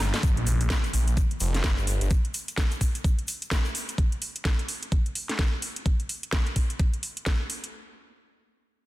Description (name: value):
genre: bass house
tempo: 128 BPM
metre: 4/4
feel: swing 60% on 16ths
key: G minor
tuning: A4 = 440 Hz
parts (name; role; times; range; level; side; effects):
- phased detuned saw bass; bass; 0.0-2.1 s; F1 to Bb1; -25 LUFS; equal; phaser, tube saturation, sidechain pumping
- garage drum kit; drums; 0.0-7.7 s; hi-hat, snare drum, woodblock; -31 LUFS; equal; studio reverb
- tube shaker; percussion; 0.1-4.0 s; none; -41 LUFS; left 4 dB; none
- electronic kick drum; drums; 0.2-7.4 s; none; -24 LUFS; equal; studio reverb
- impact; sound effects; 0.2-2.1 s; none; -34 LUFS; equal; none
room: digital ambience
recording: dense, heavily limited modern master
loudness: -24 LUFS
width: side -17 dB against mid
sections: 0.2-7.7 A section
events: drum fill 0.0; impact 0.2-2.1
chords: none